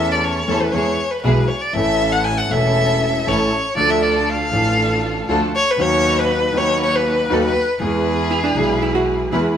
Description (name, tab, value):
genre	tango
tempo	119 BPM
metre	4/4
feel	rubato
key	A major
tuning	A4 = 440 Hz
part	dark violin	second line	0.0-9.3 s	G#4 to G#5	-19 LUFS	left 1 dB	none
part	warm grand piano	accompaniment	0.0-9.5 s	E1 to A4	-21 LUFS	left 1 dB	none
part	warm studio string section	stabs	0.0-9.5 s	B3 to B4	-24 LUFS	right 1 dB	tape echo
part	clear double bass	bass	0.0-9.5 s	E1 to E2	-24 LUFS	right 1 dB	none
part	hollow-body jazz guitar	second line	8.3-9.6 s	D4 to F#4	-22 LUFS	right 4 dB	none
room	moderate stone room reverb, RT60 1.0 s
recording	band playing live in one room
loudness	-15 LUFS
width	side -9 dB against mid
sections	0.0-9.6 A section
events	violin solo 0.0-9.6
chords	0.0 A/E; 0.7 E; 1.8 A; 3.8 Dm; 5.8 B/D#; 7.8 E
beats	0.24 0.74 1.25 | 1.75 2.26 2.77 3.27 | 3.78 4.28 4.79 5.29 | 5.79 6.30 6.80 7.30 | 7.81 8.31 8.82 9.33